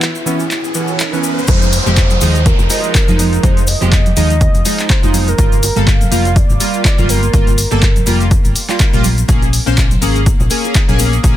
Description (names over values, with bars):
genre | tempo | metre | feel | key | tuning
deep house | 123 BPM | 4/4 | swing 56% on 16ths | F minor | A4 = 440 Hz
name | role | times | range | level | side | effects
warm velvety synth lead | melody | 0.0-8.6 s | Eb4 to F5 | -22 LUFS | right 1 dB | chorus, tape echo
chorused polysynth | stabs | 0.0-11.4 s | Fb3 to C5 | -18 LUFS | right 1 dB | sidechain pumping, tape echo
punchy analog drum machine | drums | 0.0-11.3 s | crash cymbal, handclaps, hi-hat | -20 LUFS | equal | overdrive
cabasa | percussion | 0.0-11.3 s | none | -24 LUFS | left 6 dB | none
riser and downlifter | sound effects | 0.0-5.4 s | none | -23 LUFS | right 1 dB | none
string machine, violins | texture | 0.0-1.5 s | none | barely audible | none | none
hollow-body short-scale fingered electric bass | bass | 1.5-11.4 s | F1 to Eb2 | -16 LUFS | equal | none
electronic kick drum | drums | 1.5-11.3 s | none | -13 LUFS | equal | overdrive
bongos and congas | percussion | 1.6-11.3 s | none | -25 LUFS | right 2 dB | none
room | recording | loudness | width
little or no reverb | dense, heavily limited modern master | -10 LUFS | side -12 dB against mid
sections
0.0-1.5 A section; 1.5-11.4 B section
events
riser 0.0-1.5; drop 1.5-11.4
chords
0.0 Dbm7; 1.5 Fm7; 5.4 Gm7; 9.0 Bbm7